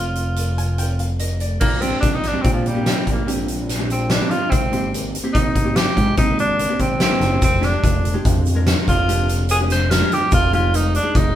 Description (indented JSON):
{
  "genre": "progressive instrumental, band music in an uneven meter",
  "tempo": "145 BPM",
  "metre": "7/4",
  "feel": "straight",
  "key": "F dorian",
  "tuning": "A4 = 440 Hz",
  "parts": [
    { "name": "clear tenor saxophone", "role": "melody", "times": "0.0-11.4 s", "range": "F3 to C5", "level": "-22 LUFS", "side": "equal", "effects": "none" },
    { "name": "vintage hollow-body jazz guitar", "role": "accompaniment", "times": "0.0-11.4 s", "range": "Ab3 to Ab5", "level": "-26 LUFS", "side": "equal", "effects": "none" },
    { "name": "fat analog bass", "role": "bass", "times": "0.0-11.3 s", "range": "F1 to Bb2", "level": "-21 LUFS", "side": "equal", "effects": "none" },
    { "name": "huge arena drum kit", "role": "drums", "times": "0.2-11.2 s", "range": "crash cymbal, hi-hat, kick drum, snare drum", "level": "-20 LUFS", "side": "equal", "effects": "none" },
    { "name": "tube shaker", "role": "percussion", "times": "7.4-11.3 s", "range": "none", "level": "-37 LUFS", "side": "right 4 dB", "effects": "none" }
  ],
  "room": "moderate stone room reverb, RT60 0.9 s",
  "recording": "band playing live in one room",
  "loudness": "-16 LUFS",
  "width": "side -11 dB against mid",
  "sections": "0.0-1.6 A section; 1.6-11.4 B section",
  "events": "hollow-body jazz guitar fill 0.4-1.6; tenor saxophone solo 1.6-11.4",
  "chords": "0.0 Fm7; 1.6 Bb13; 4.5 Abmaj7; 7.4 Fm69; 10.3 Fm7"
}